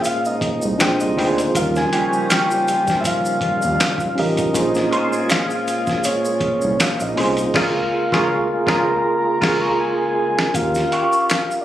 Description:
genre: R&B, neo-soul.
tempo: 80 BPM.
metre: 4/4.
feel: swing 55% on 16ths.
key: Bb dorian.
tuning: A4 = 440 Hz.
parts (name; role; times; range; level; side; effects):
soft octave-layered synth lead; melody; 0.0-11.6 s; Db5 to Bb5; -22 LUFS; left 1 dB; chorus, slapback echo, plate reverb.
mellow tine electric piano; accompaniment; 0.0-11.6 s; D3 to C5; -21 LUFS; right 1 dB; medium stereo tremolo, plate reverb.
percussive tonewheel organ; sustained chords; 0.0-10.5 s; Bb2 to F4; -28 LUFS; right 1 dB; slow rotary speaker, overdrive, chorus vibrato, plate reverb.
dark horn section; stabs; 0.0-9.6 s; F3 to Ab4; -28 LUFS; left 1 dB; plate reverb.
maracas and finger snaps; percussion; 0.0-11.6 s; none; -30 LUFS; equal; none.
dusty soul sampler-style drum kit; drums; 0.1-11.5 s; crash cymbal, handclaps, hi-hat, kick drum, snare drum; -22 LUFS; equal; none.
round analog bass; bass; 0.4-10.8 s; A1 to Eb2; -26 LUFS; equal; none.
electric guitar through a small old amp; second line; 0.8-11.3 s; Db4 to Db5; -24 LUFS; right 2 dB; wah, ensemble chorus, plate reverb.
room: moderate studio ambience, RT60 0.5 s.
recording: recorded on a phone in the room, studio reverb.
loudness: -16 LUFS.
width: side -12 dB against mid.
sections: 0.0-10.5 A section; 10.5-11.6 B section.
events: band accent 7.5-10.5; drum fill 9.8-10.5.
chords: 0.0 Bbm9; 0.8 Bb9; 1.5 Eb9; 4.5 Bbm9; 7.5 Db6; 10.5 Eb9.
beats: 0.04 0.80 | 1.54 2.29 3.04 3.79 | 4.54 5.29 6.04 6.79 | 7.54 8.29 9.04 9.79 | 10.54 11.29.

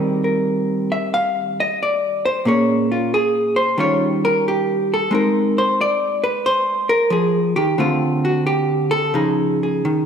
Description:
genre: solo jazz.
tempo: 90 BPM.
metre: 4/4.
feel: swing 68% on 8ths, rubato.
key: unclear.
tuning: A4 = 440 Hz.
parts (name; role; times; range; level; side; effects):
vintage hollow-body jazz guitar; solo; 0.0-10.1 s; Bb2 to F5; -16 LUFS; equal; none.
room: moderate scoring stage reverb, RT60 2.0 s.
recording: recorded in a church or concert hall.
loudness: -16 LUFS.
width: side -7 dB against mid.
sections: 0.0-10.1 A section.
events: hollow-body jazz guitar solo 0.0-10.1.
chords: 0.0 Eb6; 2.5 Bbm7; 3.8 Eb9; 5.1 Ab; 7.8 D5; 9.1 Dbadd9.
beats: 0.44 1.12 1.79 | 2.45 3.11 3.77 4.43 | 5.10 5.77 6.44 7.10 | 7.77 8.44 9.13 9.85.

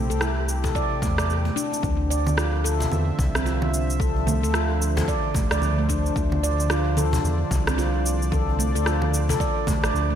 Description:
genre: organic downtempo.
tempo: 111 BPM.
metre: 4/4.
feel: swing 60% on 16ths.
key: D minor.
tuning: A4 = 440 Hz.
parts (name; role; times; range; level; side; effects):
warm analog pad; sustained chords; 0.0-10.2 s; C3 to G5; -31 LUFS; right 1 dB; chorus, sidechain pumping.
handpan; arpeggios; 0.0-10.2 s; A3 to D5; -26 LUFS; right 1 dB; digital delay.
round analog bass; bass; 0.0-10.2 s; A1 to E2; -24 LUFS; equal; none.
electronic cabasa, rim click and congas; drums; 0.1-10.1 s; none; -28 LUFS; right 1 dB; overdrive, gated reverb.
electronic kick drum; drums; 0.6-9.8 s; none; -27 LUFS; equal; overdrive.
cajon; percussion; 0.6-9.8 s; none; -32 LUFS; left 2 dB; none.
room: light reverb.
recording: bright 1980s-style digital production.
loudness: -20 LUFS.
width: side -9 dB against mid.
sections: 0.0-1.8 A section; 1.8-10.2 B section.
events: kick drops out 1.3-1.8.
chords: 0.0 C; 1.8 Dm7.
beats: 0.21 0.76 1.30 | 1.84 2.38 2.92 3.46 | 4.00 4.54 5.08 5.62 | 6.16 6.70 7.24 7.78 | 8.32 8.86 9.40 9.95.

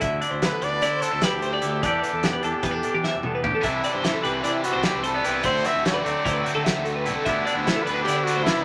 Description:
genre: math rock and midwest emo.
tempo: 298 BPM (eighths).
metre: 9/8.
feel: straight.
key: unclear.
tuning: A4 = 440 Hz.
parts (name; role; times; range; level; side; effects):
twangy electric guitar; accompaniment; 0.0-8.6 s; E2 to G4; -30 LUFS; equal; none.
twelve-string electric guitar; arpeggios; 0.0-8.6 s; G4 to E5; -30 LUFS; equal; tremolo.
fuzz fingered electric bass; bass; 0.0-8.6 s; C2 to E3; -35 LUFS; equal; overdrive.
loose indie drum kit; drums; 0.0-8.6 s; hi-hat, kick drum, snare drum, toms; -30 LUFS; equal; none.
clear trumpet; melody; 0.4-8.6 s; E4 to E5; -29 LUFS; equal; none.
raw garage guitar; riff; 3.6-8.6 s; C3 to F#4; -30 LUFS; equal; overdrive.
room: wet small room reverb, RT60 0.5 s.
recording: none.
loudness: -23 LUFS.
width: mono.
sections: 0.0-8.6 A section.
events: drum fill 3.0-3.6.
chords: 0.0 G6/D; 1.8 Em7; 3.6 Cmaj9; 5.4 D13; 7.3 G6/D.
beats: | 0.01 0.22 0.42 0.62 0.82 1.02 1.22 1.42 1.62 | 1.82 2.03 2.23 2.43 2.63 2.83 3.03 3.23 3.43 | 3.63 3.84 4.04 4.24 4.44 4.64 4.84 5.04 5.25 | 5.45 5.65 5.85 6.05 6.25 6.45 6.65 6.85 7.05 | 7.26 7.46 7.66 7.86 8.06 8.26 8.46.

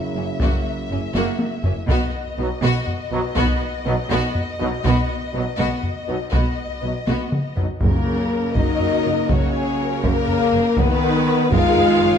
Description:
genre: cinematic, epic orchestral film score.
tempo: 81 BPM (dotted quarters).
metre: 6/8.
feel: straight.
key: F# major.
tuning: A4 = 440 Hz.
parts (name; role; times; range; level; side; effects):
warm symphonic violin section; melody; 0.0-12.2 s; A#4 to E#5; -29 LUFS; left 4 dB; none.
warm French horn section; sustained chords; 0.0-12.2 s; A#3 to E#4; -22 LUFS; left 4 dB; none.
warm trombone section; sustained chords; 0.0-12.2 s; B2 to D#4; -28 LUFS; right 4 dB; none.
warm symphonic violin section; second line; 0.2-12.2 s; B3 to C#5; -29 LUFS; left 3 dB; none.
warm symphonic viola section; accompaniment; 0.2-12.2 s; C#3 to B3; -26 LUFS; right 1 dB; none.
rich symphonic double bass section; bass; 0.2-12.1 s; F#1 to B1; -26 LUFS; right 4 dB; none.
warm symphonic cello section; bass; 0.2-12.1 s; F#2 to B2; -27 LUFS; right 2 dB; none.
solo taiko drums; drums; 0.4-12.0 s; none; -24 LUFS; equal; none.
timpani; percussion; 7.8-8.5 s; F#2; -25 LUFS; equal; none.
room: wet recital hall reverb, RT60 1.6 s.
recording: dark, warm production.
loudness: -18 LUFS.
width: side -8 dB against mid.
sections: 0.0-7.8 A section; 7.8-12.2 B section.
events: build-up 0.0-7.8; drum fill 1.1-1.9, 7.1-7.8.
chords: 0.0 F#7; 1.9 B; 7.8 F#; 10.8 B/F#.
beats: | 0.40 1.14 | 1.89 2.63 | 3.37 4.11 | 4.85 5.59 | 6.33 7.07 | 7.81 8.55 | 9.29 10.04 | 10.78 11.52.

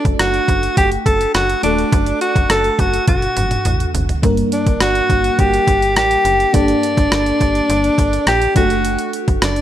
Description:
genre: 1980s-style pop.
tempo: 104 BPM.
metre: 4/4.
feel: straight.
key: G harmonic minor.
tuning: A4 = 440 Hz.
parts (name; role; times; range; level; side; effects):
bright alto saxophone; melody; 0.0-9.6 s; D4 to A4; -16 LUFS; equal; ping-pong delay.
FM electric piano with soft pad layer; accompaniment; 0.0-9.6 s; G2 to Bb4; -22 LUFS; equal; chorus.
slap-like FM bass; bass; 0.0-9.6 s; Eb1 to Bb1; -21 LUFS; equal; none.
clean 12-bit digital drum machine; drums; 0.1-9.6 s; hi-hat, kick drum, rim click, toms; -18 LUFS; equal; none.
room: moderate plate reverb, RT60 1.6 s, digital ambience.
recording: bright 1980s-style digital production.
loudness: -13 LUFS.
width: side -11 dB against mid.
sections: 0.0-9.6 A section.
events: drum fill 3.1-4.2.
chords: 0.0 D; 4.2 Gm; 8.6 D/F#.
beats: 0.19 0.77 1.35 | 1.93 2.50 3.08 3.65 | 4.23 4.81 5.39 5.96 | 6.54 7.12 7.69 8.27 | 8.85 9.43.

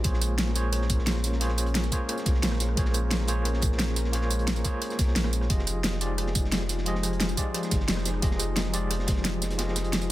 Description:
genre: liquid drum and bass.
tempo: 176 BPM.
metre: 4/4.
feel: straight.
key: unclear.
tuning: A4 = 439 Hz.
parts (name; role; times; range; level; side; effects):
overdriven tine electric piano; accompaniment; 0.0-10.1 s; F3 to Eb5; -32 LUFS; equal; fast tremolo, vintage 12-bit sampler grit, digital delay.
lush unison pad; sustained chords; 0.0-10.1 s; F3 to Bb4; -36 LUFS; left 1 dB; chorus, sidechain pumping.
warm sub bass; bass; 0.0-10.1 s; F1 to C2; -28 LUFS; equal; none.
crunchy breakbeat drum kit; drums; 0.0-10.1 s; hi-hat, snare drum; -37 LUFS; equal; high-pass filter on hats, high-pass filter on snare, high-pass filter on room.
electronic kick drum; drums; 0.0-9.1 s; none; -27 LUFS; equal; overdrive.
pop drum kit; drums; 0.0-10.1 s; hi-hat, rim click, snare drum, tambourine; -29 LUFS; right 1 dB; overdrive.
room: digital ambience.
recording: none.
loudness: -24 LUFS.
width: side -15 dB against mid.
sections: 0.0-10.1 A section.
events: none.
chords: 0.0 Bbm7; 5.5 Fm7.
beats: | 0.04 0.39 0.73 1.07 | 1.41 1.75 2.09 2.43 | 2.77 3.11 3.45 3.79 | 4.14 4.48 4.82 5.16 | 5.50 5.84 6.18 6.52 | 6.86 7.20 7.54 7.89 | 8.23 8.57 8.91 9.25 | 9.59 9.93.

